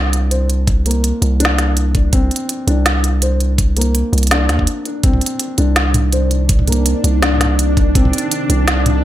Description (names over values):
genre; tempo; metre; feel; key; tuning
half-time drum and bass; 165 BPM; 4/4; swing 55% on 16ths, half-time; C minor; A4 = 440 Hz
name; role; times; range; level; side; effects
felt-muted upright piano; arpeggios; 0.0-9.0 s; Bb3 to C5; -21 LUFS; left 2 dB; tape echo
long sustained 808-style bass; bass; 0.0-9.0 s; C2 to Eb2; -15 LUFS; equal; none
organic electronic drum kit; drums; 0.1-8.9 s; hi-hat, snare drum, toms; -18 LUFS; right 1 dB; none
electronic kick drum; drums; 0.7-8.0 s; none; -15 LUFS; equal; none
bowed-like drone; sustained chords; 6.0-9.0 s; C3 to D4; -21 LUFS; right 1 dB; built-in reverb, phaser, sidechain pumping
room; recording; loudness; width
light reverb, digital ambience; none; -13 LUFS; side -13 dB against mid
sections
0.0-9.0 A section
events
break 4.7-5.0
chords
0.0 Cmadd9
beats
0.31 | 0.68 1.04 1.40 1.77 | 2.13 2.49 2.86 3.22 | 3.58 3.95 4.31 4.68 | 5.04 5.40 5.77 6.13 | 6.49 6.86 7.22 7.58 | 7.95 8.31 8.68 9.04